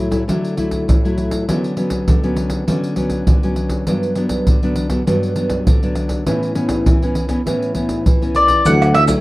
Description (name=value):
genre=samba and choro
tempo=100 BPM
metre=4/4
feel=straight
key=D major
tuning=A4 = 441 Hz
part: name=nylon-string guitar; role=accompaniment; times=0.0-9.2 s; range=G2 to E4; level=-19 LUFS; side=equal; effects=none
part: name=surdo, pandeiro, maracas and tamborim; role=percussion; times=0.1-9.2 s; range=none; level=-18 LUFS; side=equal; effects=none
part: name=mandolin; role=melody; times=8.4-9.0 s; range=D5 to F#5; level=-13 LUFS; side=left 1 dB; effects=slapback echo
part: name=dark tuba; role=bass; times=8.7-9.2 s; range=D2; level=-15 LUFS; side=equal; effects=none
room=light reverb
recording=dry, close 1970s-style studio recording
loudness=-14 LUFS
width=side -18 dB against mid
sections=0.0-8.7 A section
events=none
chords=0.0 Dadd9; 1.5 Bmadd9/D; 3.9 Gmaj7; 6.3 Aadd9; 8.7 Dadd9